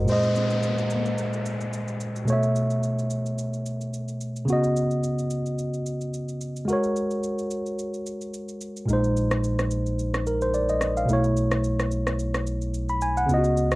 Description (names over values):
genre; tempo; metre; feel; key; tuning
amapiano; 109 BPM; 4/4; swing 55% on 16ths; unclear; A4 = 438 Hz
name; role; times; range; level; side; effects
tine electric piano; accompaniment; 0.0-13.8 s; Bb2 to B5; -24 LUFS; equal; cassette tape
electronic shaker and rim click; drums; 0.1-13.8 s; none; -32 LUFS; equal; cassette tape
downlifter; sound effects; 0.1-4.5 s; none; -34 LUFS; left 2 dB; none
punchy sub bass; bass; 8.9-13.8 s; Bb1 to Db2; -29 LUFS; equal; none
room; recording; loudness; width
light reverb; home recording on cassette; -23 LUFS; side -20 dB against mid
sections
0.1-13.8 A section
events
break 7.8-8.9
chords
0.1 Bb9sus4; 2.3 B9sus4; 4.5 Db9sus4; 6.7 Ab9sus4; 8.9 Bb9sus4; 11.1 B9sus4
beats
| 0.08 0.63 1.18 1.73 | 2.28 2.83 3.38 3.93 | 4.48 5.03 5.58 6.13 | 6.68 7.24 7.79 8.34 | 8.89 9.44 9.99 10.54 | 11.09 11.64 12.19 12.74 | 13.29